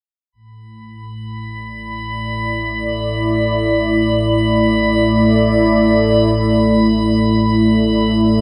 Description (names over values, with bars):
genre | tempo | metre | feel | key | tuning
ambient | free time | none | none | unclear | A4 = 441 Hz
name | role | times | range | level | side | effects
warm analog pad | sustained chords | 0.3-8.4 s | A2 to D5 | -16 LUFS | equal | chorus
warm sub bass | bass | 0.3-8.4 s | A1 | -31 LUFS | equal | none
drifting glass-harmonics texture | texture | 1.3-8.4 s | B5 | -25 LUFS | equal | chorus, built-in reverb
room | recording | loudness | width
wet lush hall reverb, RT60 3.0 s | none | -15 LUFS | mono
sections
0.3-8.4 A section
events
fade-in on sub bass 0.3-8.4; filter sweep on analog synth pad 0.3-8.4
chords
0.3 Asus4